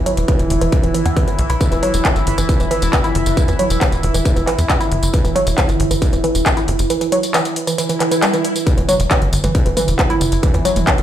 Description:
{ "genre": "driving peak-time techno", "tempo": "136 BPM", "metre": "4/4", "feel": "straight", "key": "E minor", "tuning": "A4 = 440 Hz", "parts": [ { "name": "tight sequencer bass", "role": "bass", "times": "0.0-11.0 s", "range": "E1 to E2", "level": "-18 LUFS", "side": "equal", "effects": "tube saturation, sidechain pumping" }, { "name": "analog drone", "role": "drone", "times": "0.0-11.0 s", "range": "E3 to E4", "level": "-22 LUFS", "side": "right 1 dB", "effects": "chorus, sidechain pumping" }, { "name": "woody wave-folded pluck", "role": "riff", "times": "0.1-10.9 s", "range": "E3 to E4", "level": "-20 LUFS", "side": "right 1 dB", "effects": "chorus, sidechain pumping, ping-pong delay" }, { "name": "techno drum kit", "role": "drums", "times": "0.1-11.0 s", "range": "handclaps, hi-hat, tambourine, toms", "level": "-21 LUFS", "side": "equal", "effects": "sidechain pumping on hats, sidechain pumping on cymbals, sidechain pumping on perc, sidechain pumping on toms" }, { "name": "electronic kick drum", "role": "drums", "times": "0.3-11.0 s", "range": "none", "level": "-17 LUFS", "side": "equal", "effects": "distortion" }, { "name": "swell", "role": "sound effects", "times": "7.9-8.7 s", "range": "none", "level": "-24 LUFS", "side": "right 1 dB", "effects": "none" } ], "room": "light reverb", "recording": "played on a big sound system in a bare room, stone room reverb", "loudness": "-14 LUFS", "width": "side -11 dB against mid", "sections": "0.0-8.7 A section; 8.7-11.0 B section", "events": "swell 7.9-8.7; drop 8.7-11.0", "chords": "0.0 E5" }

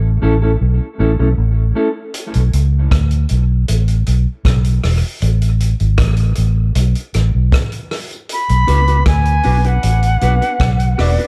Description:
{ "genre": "dub reggae", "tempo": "78 BPM", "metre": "4/4", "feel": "straight", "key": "B dorian", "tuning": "A4 = 440 Hz", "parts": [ { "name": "vintage muted fingered electric bass", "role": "bass", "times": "0.0-11.2 s", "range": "E1 to D2", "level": "-16 LUFS", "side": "equal", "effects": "none" }, { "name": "mellow electric guitar", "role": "accompaniment", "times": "0.2-1.9, 8.7-11.3 s", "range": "A3 to B4", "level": "-23 LUFS", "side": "equal", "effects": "tape echo" }, { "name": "vintage drum kit", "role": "drums", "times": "2.1-11.3 s", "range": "hi-hat, kick drum, rim click", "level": "-21 LUFS", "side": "equal", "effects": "none" }, { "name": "jazz flute", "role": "melody", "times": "8.3-11.3 s", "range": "D5 to B5", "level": "-20 LUFS", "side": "equal", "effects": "tape echo" } ], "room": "studio ambience", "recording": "dark, warm production", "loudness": "-15 LUFS", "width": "mono", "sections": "0.0-11.3 A section", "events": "break 0.0-2.1", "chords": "0.0 A; 2.1 Bm; 5.2 N.C.; 8.3 Bm" }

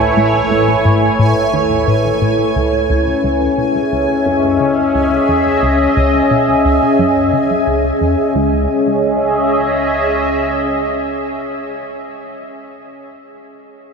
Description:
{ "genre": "ambient, sequencer-driven space music", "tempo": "88 BPM", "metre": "4/4", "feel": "straight", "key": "C# minor", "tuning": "A4 = 441 Hz", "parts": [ { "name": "sweeping resonant pad", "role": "sustained chords", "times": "0.0-11.8 s", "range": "A3 to E5", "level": "-14 LUFS", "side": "equal", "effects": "chorus, shimmer reverb" }, { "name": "tight sequenced synth", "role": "riff", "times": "0.0-8.7 s", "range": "C#2 to C#3", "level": "-19 LUFS", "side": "equal", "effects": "chorus, phaser, analog delay" }, { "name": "analog drone", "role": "bass", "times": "0.1-10.4 s", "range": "A1 to C#2", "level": "-34 LUFS", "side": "equal", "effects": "none" }, { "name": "bubbling stepped-filter texture", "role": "texture", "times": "0.0-8.4 s", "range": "G#5", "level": "-24 LUFS", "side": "right 3 dB", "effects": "chorus, built-in reverb, shimmer reverb" } ], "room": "wet huge ambient reverb, RT60 8.0 s", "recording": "none", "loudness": "-12 LUFS", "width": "side -5 dB against mid", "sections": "0.0-8.4 A section; 8.4-11.1 B section", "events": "none", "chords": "0.0 Amaj7; 2.9 C#m7; 8.4 C#m" }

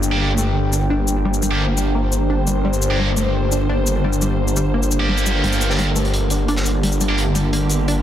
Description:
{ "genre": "dark technical drum and bass", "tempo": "172 BPM", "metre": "4/4", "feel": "straight", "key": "G minor", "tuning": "A4 = 440 Hz", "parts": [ { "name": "swarming drone", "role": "sustained chords", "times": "0.0-8.0 s", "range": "D3 to C5", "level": "-24 LUFS", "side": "equal", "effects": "built-in reverb" }, { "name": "phased detuned saw bass", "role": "bass", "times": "0.0-8.0 s", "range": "G1", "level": "-20 LUFS", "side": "equal", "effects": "phaser, tube saturation" }, { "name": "shaker", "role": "drums", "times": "0.0-7.8 s", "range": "none", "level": "-26 LUFS", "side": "left 4 dB", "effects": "none" }, { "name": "warbly tape-like pad", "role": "texture", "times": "0.0-8.0 s", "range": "D4 to A5", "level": "-25 LUFS", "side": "equal", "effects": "chorus, built-in reverb" }, { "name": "heavy high-gain guitar", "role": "stabs", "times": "0.1-7.2 s", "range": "Bb3 to G4", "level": "-25 LUFS", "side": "right 2 dB", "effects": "distortion, digital delay" }, { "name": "wide unison pluck", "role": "arpeggios", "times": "0.2-7.9 s", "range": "G3 to D4", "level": "-26 LUFS", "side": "left 1 dB", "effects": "digital delay" }, { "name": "crunchy breakbeat drum kit", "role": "drums", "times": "5.4-8.0 s", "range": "hi-hat, snare drum", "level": "-28 LUFS", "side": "equal", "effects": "high-pass filter on hats, high-pass filter on snare, high-pass filter on room" } ], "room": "little or no reverb", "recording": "dense, heavily limited modern master", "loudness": "-16 LUFS", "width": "side -11 dB against mid", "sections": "0.0-8.0 A section", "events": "filter sweep on synth drone 0.0-8.0", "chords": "0.0 Gm" }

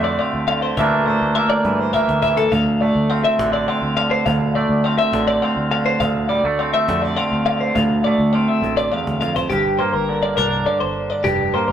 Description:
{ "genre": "math rock and midwest emo", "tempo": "69 BPM (dotted quarters)", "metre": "6/8", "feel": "straight", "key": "D minor", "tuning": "A4 = 440 Hz", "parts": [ { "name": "twangy electric guitar", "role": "accompaniment", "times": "0.0-11.7 s", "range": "D2 to D4", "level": "-19 LUFS", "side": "right 2 dB", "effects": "none" }, { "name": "twelve-string electric guitar", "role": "arpeggios", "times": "0.0-11.7 s", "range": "G4 to F5", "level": "-20 LUFS", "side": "left 2 dB", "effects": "none" }, { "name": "fingered electric bass", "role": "bass", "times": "0.0-11.7 s", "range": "F1 to G2", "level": "-26 LUFS", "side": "equal", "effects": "none" }, { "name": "cajon", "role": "drums", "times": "0.2-11.6 s", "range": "none", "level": "-32 LUFS", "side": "equal", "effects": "none" } ], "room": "moderate stone room reverb, RT60 1.3 s", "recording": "rough rehearsal-room recording, tube saturation", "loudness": "-16 LUFS", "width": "side -9 dB against mid", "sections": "0.0-9.5 A section; 9.5-11.7 B section", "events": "drum fill 1.6-2.5, 8.6-9.5", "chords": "0.0 Dm7; 0.8 C13/D; 2.5 Dm7; 6.0 Dm9; 7.8 Dm7; 9.5 Gm7" }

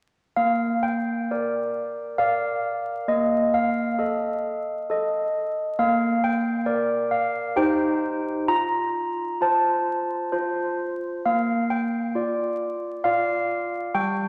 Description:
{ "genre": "classical, tune for handbells", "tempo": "66 BPM", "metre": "3/4", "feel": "straight", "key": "Bb major", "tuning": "A4 = 440 Hz", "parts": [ { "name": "handbells", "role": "solo", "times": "0.4-14.3 s", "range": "G3 to Bb5", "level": "-24 LUFS", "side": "equal", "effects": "none" } ], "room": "wet concert hall reverb, RT60 2.2 s", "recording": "vinyl crackle", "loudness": "-24 LUFS", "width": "mono", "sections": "0.4-14.3 A section", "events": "none", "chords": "0.4 Bb; 3.1 F7/Bb; 5.8 Bb; 7.6 Cm/Eb; 8.5 F; 11.2 Bb" }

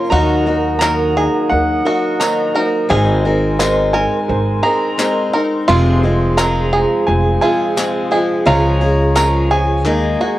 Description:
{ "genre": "indie folk with a building arrangement", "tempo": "86 BPM", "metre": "4/4", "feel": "straight", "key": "unclear", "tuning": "A4 = 435 Hz", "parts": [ { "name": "clear upright piano", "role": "melody", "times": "0.0-10.4 s", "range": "Gb5 to C6", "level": "-20 LUFS", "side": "right 1 dB", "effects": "cassette tape, analog delay" }, { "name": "felt-muted upright piano", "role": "accompaniment", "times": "0.0-10.4 s", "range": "F1 to Eb5", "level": "-22 LUFS", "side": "right 2 dB", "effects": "cassette tape" }, { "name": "picked swing-style acoustic guitar", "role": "accompaniment", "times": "0.0-10.4 s", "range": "F2 to Bb4", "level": "-19 LUFS", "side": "left 4 dB", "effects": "cassette tape" }, { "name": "breathy mellow small flute group", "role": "sustained chords", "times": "0.0-10.4 s", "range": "Ab4 to Eb6", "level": "-23 LUFS", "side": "right 4 dB", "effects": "cassette tape" }, { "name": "bluegrass banjo", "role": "arpeggios", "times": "0.0-10.4 s", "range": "F4 to C5", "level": "-21 LUFS", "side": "right 2 dB", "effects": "cassette tape, analog delay" }, { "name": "upright bass", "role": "bass", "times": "0.1-10.1 s", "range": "F1 to Eb2", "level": "-17 LUFS", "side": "equal", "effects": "none" }, { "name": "group handclap", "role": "percussion", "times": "0.8-10.0 s", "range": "none", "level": "-22 LUFS", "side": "left 4 dB", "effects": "none" }, { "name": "tambourine", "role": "percussion", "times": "0.8-9.3 s", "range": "none", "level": "-28 LUFS", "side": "right 6 dB", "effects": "none" } ], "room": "light reverb", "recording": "home recording on cassette", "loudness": "-13 LUFS", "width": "side -15 dB against mid", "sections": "0.0-10.4 A section", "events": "none", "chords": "0.1 Ebm; 2.9 Abadd9; 5.7 Fm; 8.5 Db; 9.9 Ebsus4" }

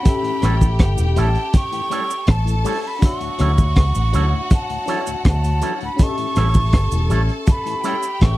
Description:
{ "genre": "lovers rock reggae", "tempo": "81 BPM", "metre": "4/4", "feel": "straight", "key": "unclear", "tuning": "A4 = 439 Hz", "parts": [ { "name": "breathy mellow silver concert flute", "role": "melody", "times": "0.0-8.4 s", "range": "A5 to C#6", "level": "-25 LUFS", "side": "right 1 dB", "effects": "tape echo" }, { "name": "bright studio string section", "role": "second line", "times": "0.0-8.4 s", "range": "F#4 to A5", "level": "-30 LUFS", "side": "left 2 dB", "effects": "none" }, { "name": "FM electric piano", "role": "accompaniment", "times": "0.0-8.4 s", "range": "C#4 to E5", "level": "-30 LUFS", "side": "left 4 dB", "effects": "chorus, phaser, slapback echo" }, { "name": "crunchy breakbeat drum kit", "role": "drums", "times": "0.1-8.4 s", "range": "hi-hat, kick drum, rim click", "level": "-16 LUFS", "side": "equal", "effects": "none" }, { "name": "cabasa", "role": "percussion", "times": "0.1-8.2 s", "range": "none", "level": "-36 LUFS", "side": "right 8 dB", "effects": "none" }, { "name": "mellow tonewheel organ", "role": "accompaniment", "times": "0.2-7.9 s", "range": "D2 to C#4", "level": "-30 LUFS", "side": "left 9 dB", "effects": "chorus vibrato, slow rotary speaker, slapback echo" }, { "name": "electric guitar with an envelope filter", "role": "stabs", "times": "0.4-8.0 s", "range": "F#3 to A4", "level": "-26 LUFS", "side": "right 5 dB", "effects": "slapback echo" }, { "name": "vintage muted fingered electric bass", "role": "bass", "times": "0.4-8.4 s", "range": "E1 to D2", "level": "-18 LUFS", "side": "equal", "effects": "none" } ], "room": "little or no reverb", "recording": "dry, close 1970s-style studio recording", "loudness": "-16 LUFS", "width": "side -16 dB against mid", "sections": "0.0-8.4 A section", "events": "none", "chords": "0.1 A7; 3.0 Dmaj9; 6.0 A7" }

